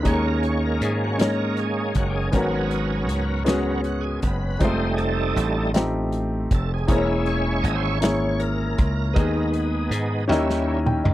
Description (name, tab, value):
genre	slow gospel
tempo	53 BPM (dotted quarters)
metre	6/8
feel	straight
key	G# minor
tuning	A4 = 440 Hz
part	warm concert grand piano	accompaniment	0.0-11.1 s	G#2 to A#5	-25 LUFS	left 2 dB	none
part	bright tonewheel organ	sustained chords	0.0-10.8 s	F#3 to D#5	-27 LUFS	right 2 dB	overdrive, chorus vibrato, slow rotary speaker
part	dry thumbed slap bass	bass	0.0-11.1 s	E1 to G#2	-25 LUFS	equal	none
part	natural country drum kit	drums	0.1-11.1 s	hi-hat, kick drum, snare drum, toms	-22 LUFS	equal	none
room	little or no reverb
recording	dry, close 1970s-style studio recording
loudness	-20 LUFS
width	side -14 dB against mid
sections	0.0-11.1 A section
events	tonewheel organ solo 0.0-11.1; drum fill 10.3-11.1; grand piano fill 10.3-11.1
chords	0.1 D#7sus4; 2.3 G#m11; 4.6 F7; 6.9 A#m7b5/E; 9.2 G#m/D#; 10.3 D#7b9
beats	| 0.06 1.20 | 2.33 3.47 | 4.61 5.75 | 6.89 8.02 | 9.16 10.30